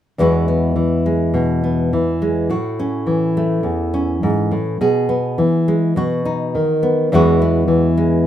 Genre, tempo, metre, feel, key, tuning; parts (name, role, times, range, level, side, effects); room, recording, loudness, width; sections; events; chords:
folk; 104 BPM; 4/4; straight; E major; A4 = 440 Hz
nylon-string guitar; accompaniment; 0.2-8.3 s; E2 to G#4; -15 LUFS; equal
moderate studio ambience, RT60 0.4 s; minimal, uncompressed stereo recording; -15 LUFS; side -11 dB against mid
0.2-8.3 A section
0.2 Eadd9; 2.5 A6; 4.8 E/B; 6.0 B; 7.1 Eadd9